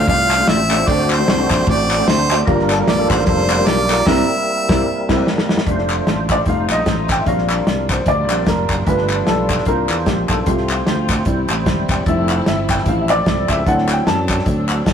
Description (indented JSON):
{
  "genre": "uptempo gospel",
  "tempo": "150 BPM",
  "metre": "4/4",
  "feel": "swing 57% on 8ths",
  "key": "F major",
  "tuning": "A4 = 440 Hz",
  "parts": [
    { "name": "clear harmonica", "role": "melody", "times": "0.0-5.3 s", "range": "A4 to F5", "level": "-18 LUFS", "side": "right 1 dB", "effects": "none" },
    { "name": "percussive tonewheel organ", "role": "sustained chords", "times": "0.0-14.9 s", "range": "E3 to C5", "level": "-23 LUFS", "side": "right 1 dB", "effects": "fast rotary speaker, chorus vibrato" },
    { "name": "fingered electric bass", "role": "bass", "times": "0.0-14.9 s", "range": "Eb1 to F#2", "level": "-21 LUFS", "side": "equal", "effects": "none" },
    { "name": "warm soul drum kit", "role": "drums", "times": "0.0-14.9 s", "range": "crash cymbal, hi-hat, kick drum, ride cymbal, snare drum", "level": "-20 LUFS", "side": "equal", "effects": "none" },
    { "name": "warm upright piano", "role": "accompaniment", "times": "0.1-14.4 s", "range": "G2 to A5", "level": "-20 LUFS", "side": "left 1 dB", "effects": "none" },
    { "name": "group handclap", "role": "percussion", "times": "0.3-14.8 s", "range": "none", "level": "-24 LUFS", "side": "left 2 dB", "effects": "none" },
    { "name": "warm studio string section", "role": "sustained chords", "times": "5.7-14.9 s", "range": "E3 to F4", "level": "-31 LUFS", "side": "equal", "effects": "none" }
  ],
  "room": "moderate stone room reverb, RT60 1.1 s",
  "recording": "rough rehearsal-room recording, warm saturation",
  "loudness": "-14 LUFS",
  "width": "side -8 dB against mid",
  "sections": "0.0-5.7 A section; 5.7-14.9 B section",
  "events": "band accent 4.1-5.7; drum fill 4.9-5.7; upright piano solo 5.7-14.9",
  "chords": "0.0 F6; 0.9 D7; 2.5 Gm7; 4.1 C7; 5.7 F6; 6.5 F7; 7.3 Bb6; 8.9 G7; 9.7 C9sus4; 10.5 F/C; 11.3 C; 12.1 Fmaj7; 13.7 D7"
}